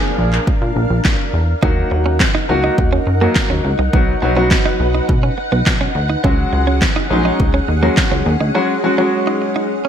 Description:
dance-pop; 104 BPM; 4/4; straight; Eb minor; A4 = 440 Hz
warm baby grand piano; accompaniment; 0.0-9.7 s; F3 to Ab4; -19 LUFS; left 1 dB; lush chorus, sidechain pumping
soft string machine; sustained chords; 0.0-9.9 s; Db4 to Gb5; -22 LUFS; equal; phaser, ensemble chorus, sidechain pumping
plucky analog bass; bass; 0.2-8.5 s; Bb1 to B2; -17 LUFS; equal; sidechain pumping
deep house drum kit; drums; 0.3-8.1 s; handclaps, kick drum, snare drum; -16 LUFS; equal; gated reverb
direct-recorded clean electric guitar; riff; 1.6-9.9 s; Bb3 to Eb4; -22 LUFS; right 6 dB; analog chorus
light reverb; bright 1980s-style digital production; -13 LUFS; side -8 dB against mid
0.0-9.9 A section
0.0 Bb; 1.6 Ebm; 3.9 B; 6.2 Dbsus4
0.47 1.05 | 1.63 2.20 2.78 3.36 | 3.93 4.51 5.09 5.67 | 6.24 6.82 7.40 7.97 | 8.55 9.13 9.70

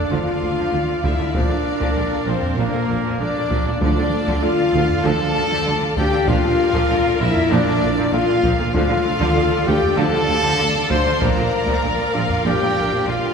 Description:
cinematic, epic orchestral film score; 97 BPM; 4/4; straight; D minor; A4 = 441 Hz
clear symphonic violin section; melody; 0.0-13.3 s; Bb4 to C6; -27 LUFS; left 3 dB
warm symphonic violin section; second line; 0.0-13.3 s; D5 to F5; -29 LUFS; left 2 dB
bright symphonic viola section; accompaniment; 0.0-13.3 s; D3 to Bb4; -28 LUFS; right 1 dB
mellow French horn section; sustained chords; 0.0-13.3 s; Bb3 to C5; -22 LUFS; left 3 dB
clear trumpet; stabs; 0.0-13.3 s; Bb3 to C5; -24 LUFS; right 1 dB
clear trombone section; sustained chords; 0.1-12.7 s; F3 to D4; -31 LUFS; equal
dark tuba; bass; 0.1-13.1 s; Bb1 to D2; -26 LUFS; right 2 dB
rich symphonic cello section; bass; 0.1-13.3 s; Bb2 to D3; -27 LUFS; right 2 dB
rich symphonic double bass section; bass; 0.1-13.1 s; Bb1 to D2; -28 LUFS; right 2 dB
solo taiko drums; drums; 1.0-12.6 s; -26 LUFS; equal
timpani; percussion; 3.8-4.7, 8.7-9.6 s; D3; -29 LUFS; equal
wet church reverb, RT60 3.1 s; recorded in a church or concert hall; -16 LUFS; side -6 dB against mid
0.0-13.3 A section
0.0 Dm; 1.3 Bb; 3.8 Dm; 6.3 Bb; 8.7 Dm; 11.2 Bb
0.11 0.73 | 1.34 1.96 2.58 3.19 | 3.81 4.43 5.05 5.66 | 6.28 6.90 7.51 8.13 | 8.75 9.37 9.98 10.60 | 11.22 11.84 12.46 13.07

